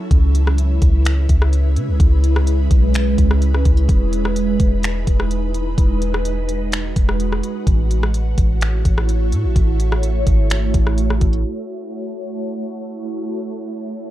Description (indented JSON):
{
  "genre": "hip hop, atmospheric cloud-rap",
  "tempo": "127 BPM",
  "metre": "4/4",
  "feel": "half-time",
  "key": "unclear",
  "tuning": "A4 = 440 Hz",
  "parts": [
    { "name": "ethereal airy pad", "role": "sustained chords", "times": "0.0-14.1 s", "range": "G#3 to C#5", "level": "-23 LUFS", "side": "right 2 dB", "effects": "ensemble chorus, built-in reverb, phaser" },
    { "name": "soft 808-style bass", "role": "bass", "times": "0.1-11.4 s", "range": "E1 to C#3", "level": "-17 LUFS", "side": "equal", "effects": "none" },
    { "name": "smooth R&B drum kit", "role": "drums", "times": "0.1-11.4 s", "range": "finger snaps, hi-hat, kick drum, rim click", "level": "-18 LUFS", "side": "equal", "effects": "none" }
  ],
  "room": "little or no reverb",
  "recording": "dark, warm production, low-pass filter",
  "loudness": "-15 LUFS",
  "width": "side -14 dB against mid",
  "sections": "0.0-11.4 A section; 11.4-14.1 B section",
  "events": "filter sweep 11.4-14.1",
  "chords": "0.1 C#m7; 3.9 Emaj7; 7.7 A6; 11.4 F#m7"
}